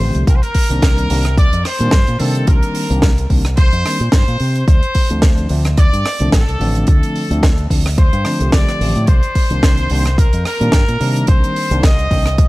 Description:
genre	nu-disco, nu disco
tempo	109 BPM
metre	4/4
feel	swing 55% on 16ths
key	C dorian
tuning	A4 = 440 Hz
part	clear trumpet section	melody	0.0-12.5 s	A4 to Eb5	-21 LUFS	left 1 dB	tape echo
part	tine electric piano	accompaniment	0.0-12.2 s	D3 to G4	-22 LUFS	equal	medium tremolo
part	fingered electric bass with an envelope filter	bass	0.0-12.5 s	A1 to C3	-17 LUFS	equal	transformer saturation
part	tight funk drum kit	drums	0.1-12.5 s	hi-hat, rim click, snare drum	-22 LUFS	right 1 dB	studio reverb
part	electronic kick drum	drums	0.3-12.5 s	none	-12 LUFS	equal	studio reverb
room	studio reverb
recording	dry, gritty hardware recording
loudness	-12 LUFS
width	side -20 dB against mid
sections	0.0-12.5 A section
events	none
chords	0.3 Cm7; 4.7 Dm7; 9.1 Cm7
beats	| 0.27 0.82 1.38 1.93 | 2.48 3.03 3.58 4.13 | 4.68 5.23 5.78 6.33 | 6.88 7.43 7.98 8.53 | 9.08 9.63 10.18 10.73 | 11.28 11.83 12.38

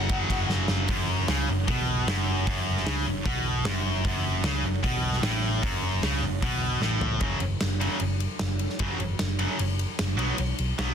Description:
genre	hard rock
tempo	152 BPM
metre	4/4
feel	straight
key	F# minor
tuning	A4 = 441 Hz
part	smooth overdriven lead guitar	melody	0.0-0.5 s	F#5	-33 LUFS	left 3 dB	slapback echo
part	heavy high-gain guitar	riff	0.0-10.9 s	F#2 to B3	-28 LUFS	equal	distortion
part	hollow-body short-scale picked electric bass	bass	0.0-10.9 s	F#1 to C#2	-28 LUFS	equal	none
part	huge arena drum kit	drums	0.1-10.9 s	hi-hat, kick drum, ride cymbal, snare drum, toms	-29 LUFS	equal	none
room	small room ambience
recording	dense, heavily limited modern master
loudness	-24 LUFS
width	side -8 dB against mid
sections	0.9-7.2 A section; 7.2-10.9 B section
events	drum fill 0.5-0.9, 6.8-7.2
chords	0.0 F#5; 0.9 F#m; 7.2 F#5; 10.2 B5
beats	0.10 0.49 | 0.89 1.28 1.68 2.08 | 2.47 2.87 3.26 3.65 | 4.05 4.45 4.84 5.24 | 5.63 6.03 6.42 6.82 | 7.21 7.61 8.01 8.40 | 8.80 9.20 9.59 9.99 | 10.39 10.79

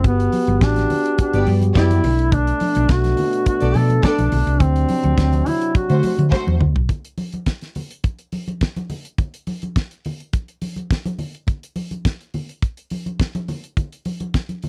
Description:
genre	disco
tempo	105 BPM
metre	4/4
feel	straight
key	unclear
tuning	A4 = 440 Hz
part	warm duduk	melody	0.0-6.3 s	B3 to A4	-23 LUFS	equal	none
part	mellow French horn section	sustained chords	0.0-6.9 s	B2 to G4	-28 LUFS	equal	none
part	hollow-body short-scale fingered electric bass	bass	0.0-6.9 s	G1 to D3	-20 LUFS	equal	none
part	damped 70s drum kit	drums	0.0-14.7 s	hi-hat, kick drum, snare drum, toms	-22 LUFS	equal	none
part	congas	percussion	0.0-14.7 s	none	-30 LUFS	equal	none
part	warm studio string section	second line	1.3-6.6 s	A3 to D5	-26 LUFS	equal	none
room	little or no reverb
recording	dry, close 1970s-style studio recording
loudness	-20 LUFS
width	mono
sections	0.0-6.9 A section; 6.9-14.7 B section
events	drum fill 6.3-6.9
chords	0.0 Gmaj7; 2.0 Bm7; 4.6 D7; 6.9 N.C.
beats	| 0.04 0.61 1.18 1.75 | 2.32 2.89 3.46 4.04 | 4.61 5.18 5.75 6.32 | 6.89 7.47 8.04 8.61 | 9.19 9.76 10.33 10.91 | 11.48 12.05 12.63 13.20 | 13.77 14.35

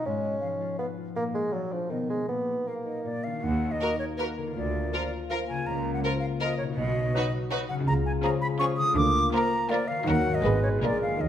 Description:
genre	cinematic, playful, whimsical film cue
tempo	162 BPM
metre	3/4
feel	straight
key	Eb minor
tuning	A4 = 440 Hz
part	dark bassoon	accompaniment	0.0-11.3 s	Eb3 to Db4	-33 LUFS	right 2 dB	none
part	concert harp	arpeggios	0.0-11.3 s	Ab2 to B4	-34 LUFS	left 6 dB	none
part	dark clarinet	second line	0.1-11.3 s	Ab3 to B4	-37 LUFS	left 1 dB	none
part	concert flute	second line	0.4-11.3 s	Bb4 to Eb6	-30 LUFS	equal	none
part	dark French horn section	sustained chords	3.4-11.3 s	F#3 to Ab4	-34 LUFS	left 5 dB	none
part	clear chamber double bass section	bass	3.4-11.3 s	Ab1 to Eb2	-31 LUFS	right 3 dB	none
part	rich chamber cello section	bass	3.4-11.3 s	Db2 to Eb3	-32 LUFS	right 2 dB	none
part	clear symphonic violin section	melody	3.8-11.1 s	Ab4 to B4	-34 LUFS	left 2 dB	none
part	clear chamber violin section	second line	3.8-11.1 s	F4 to Bb4	-39 LUFS	right 1 dB	none
part	rich studio viola section	accompaniment	3.8-11.1 s	Ab3 to Gb4	-37 LUFS	right 1 dB	none
room	wet recital hall reverb, RT60 1.6 s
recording	none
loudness	-25 LUFS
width	side -10 dB against mid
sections	0.0-3.4 A section; 3.4-11.3 B section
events	none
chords	0.1 Fdim/Ab; 1.2 Bb; 1.9 Abm/Cb; 2.3 Ebm/Bb; 3.1 Bb; 3.4 Ebm; 4.6 Bb/D; 5.7 Bbm/Db; 6.8 B; 7.9 Db; 9.0 Bb/D; 10.1 Ebm; 10.4 Abm; 10.8 Bb7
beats	| 0.06 0.42 0.79 | 1.16 1.52 1.90 | 2.28 2.67 3.05 | 3.44 3.81 4.18 | 4.55 4.93 5.30 | 5.67 6.04 6.40 | 6.78 7.14 7.51 | 7.87 8.24 8.60 | 8.96 9.34 9.71 | 10.08 10.45 10.83 | 11.21

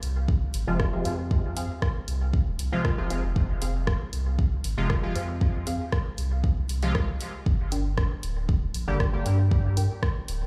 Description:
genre	dub techno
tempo	117 BPM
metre	4/4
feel	straight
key	unclear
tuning	A4 = 437 Hz
part	warm sub bass	bass	0.0-10.5 s	D1 to G2	-30 LUFS	equal	sidechain pumping
part	deep house drum kit	drums	0.0-10.4 s	hi-hat, rim click	-37 LUFS	equal	none
part	electronic kick drum	drums	0.3-10.1 s	none	-27 LUFS	equal	none
part	resonant sweep polysynth	stabs	0.7-9.2 s	C3 to G4	-35 LUFS	equal	chorus, phaser, sidechain pumping, dub echo
part	filtered dub chord stab	riff	1.1-9.9 s	C4 to G5	-41 LUFS	equal	chorus, sidechain pumping, dub echo
room	little or no reverb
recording	played on a big sound system in a bare room, stone room reverb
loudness	-26 LUFS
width	mono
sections	0.0-10.5 A section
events	filter sweep on analog polysynth 0.0-10.5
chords	0.0 Fm; 7.5 Gm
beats	0.28 0.80 | 1.31 1.82 2.33 2.85 | 3.36 3.87 4.39 4.90 | 5.41 5.92 6.44 6.95 | 7.46 7.98 8.49 9.00 | 9.52 10.03

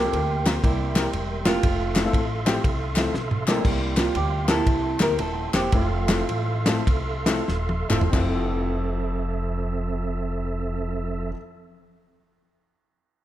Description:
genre	uptempo gospel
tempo	90-120 BPM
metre	4/4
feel	swing 65% on 8ths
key	F major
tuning	A4 = 440 Hz
part	flamenco guitar	melody	0.0-7.5 s	G3 to Bb4	-26 LUFS	right 2 dB	none
part	dark upright piano	accompaniment	0.0-11.3 s	F2 to C5	-29 LUFS	left 3 dB	none
part	mellow tonewheel organ	sustained chords	0.0-11.3 s	F3 to C6	-31 LUFS	right 3 dB	slow rotary speaker, chorus vibrato
part	upright bass	bass	0.0-11.3 s	Eb1 to D2	-28 LUFS	equal	none
part	warm soul drum kit	drums	0.1-8.3 s	crash cymbal, kick drum, ride cymbal, snare drum, toms	-25 LUFS	equal	none
part	group handclap	percussion	0.5-8.5 s	none	-33 LUFS	left 5 dB	none
room	light reverb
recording	none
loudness	-21 LUFS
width	side -12 dB against mid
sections	0.0-3.6 A section; 3.6-8.1 B section; 8.1-13.2 C section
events	drum fill 3.1-3.6, 7.5-8.1; slowing down 3.6-8.1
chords	0.0 C7sus4; 0.6 C7; 1.6 Fmaj7; 3.6 C7sus4; 4.7 C7; 5.7 Fmaj7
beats	0.13 0.64 1.14 | 1.64 2.14 2.64 3.15 | 3.65 4.15 4.66 5.19 | 5.72 6.28 6.87 7.48 | 8.13 8.80 9.47 10.14 | 10.81

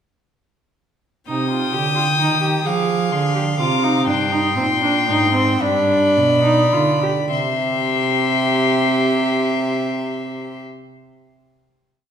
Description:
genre	classical, baroque-style fugue for string quartet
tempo	33-44 BPM (dotted quarters)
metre	6/8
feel	straight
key	C minor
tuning	A4 = 440 Hz
part	rich violin	melody	1.3-10.6 s	B5 to Eb6	-22 LUFS	left 9 dB	none
part	rich violin	second line	1.3-10.6 s	D5 to G5	-22 LUFS	equal	none
part	warm viola	accompaniment	1.3-10.6 s	C4 to Ab4	-21 LUFS	right 1 dB	none
part	dark cello	bass	1.3-10.6 s	G2 to F3	-21 LUFS	right 3 dB	none
room	wet recital hall reverb, RT60 1.7 s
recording	recorded in a church or concert hall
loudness	-16 LUFS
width	side -8 dB against mid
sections	1.3-7.3 exposition; 7.3-11.0 final chord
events	slowing down 1.3-9.1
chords	1.3 Cm; 2.7 Ddim; 4.1 Cm/G; 5.6 G7; 7.3 C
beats	| 1.29 2.65 | 4.07 5.61 | 7.32 9.15

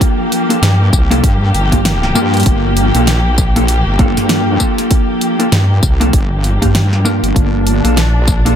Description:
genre	glitch hop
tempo	98 BPM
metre	4/4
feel	swing 59% on 16ths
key	G minor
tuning	A4 = 439 Hz
part	dark chamber string section	sustained chords	0.0-8.6 s	F3 to G4	-19 LUFS	left 2 dB	sidechain pumping
part	mellow electric guitar	stabs	0.0-8.5 s	Bb3 to Bb4	-16 LUFS	equal	vintage 12-bit sampler grit, sidechain pumping, ping-pong delay
part	electronic kick drum	drums	0.0-8.4 s	none	-14 LUFS	equal	none
part	pop drum kit	drums	0.0-8.6 s	hi-hat, snare drum, tambourine	-18 LUFS	equal	none
part	wobble bass	bass	0.6-8.6 s	G1 to G2	-13 LUFS	equal	chorus, tube saturation
room	little or no reverb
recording	none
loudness	-10 LUFS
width	side -9 dB against mid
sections	0.0-8.6 A section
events	none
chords	0.0 Gm7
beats	| 0.01 0.62 1.24 1.85 | 2.46 3.07 3.68 4.30 | 4.91 5.52 6.13 6.75 | 7.36 7.97

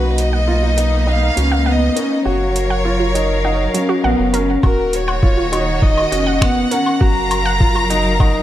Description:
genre	piano and strings electronica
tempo	101 BPM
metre	4/4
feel	straight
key	F# major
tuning	A4 = 440 Hz
part	warm chamber violin section	melody	0.0-8.4 s	A#4 to A#5	-20 LUFS	equal	none
part	muted studio string section	sustained chords	0.0-8.4 s	D#3 to E#5	-24 LUFS	left 2 dB	none
part	warm grand piano	riff	0.0-8.4 s	B3 to F#4	-20 LUFS	left 1 dB	tape echo
part	round analog bass	bass	0.0-8.4 s	D#1 to C#2	-19 LUFS	equal	sidechain pumping
part	deep house drum kit	drums	0.2-8.3 s	finger snaps, hi-hat, woodblock	-24 LUFS	left 1 dB	overdrive, studio reverb
part	wide unison pluck	arpeggios	0.3-8.3 s	F#3 to F#5	-25 LUFS	right 3 dB	vintage 12-bit sampler grit, sidechain pumping, tape echo
part	electronic kick drum	drums	4.6-8.3 s	none	-14 LUFS	equal	studio reverb
room	moderate lush hall reverb, RT60 1.7 s, small room ambience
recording	none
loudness	-13 LUFS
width	side -12 dB against mid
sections	0.0-8.4 A section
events	build-up 0.0-8.4; filter sweep on synth arpeggio sound 0.0-8.4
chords	0.0 Bmaj7; 2.3 F#maj7; 4.6 D#m; 7.0 F#maj7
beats	0.48 1.07 1.67 | 2.26 2.85 3.45 4.04 | 4.64 5.23 5.83 6.42 | 7.01 7.61 8.20

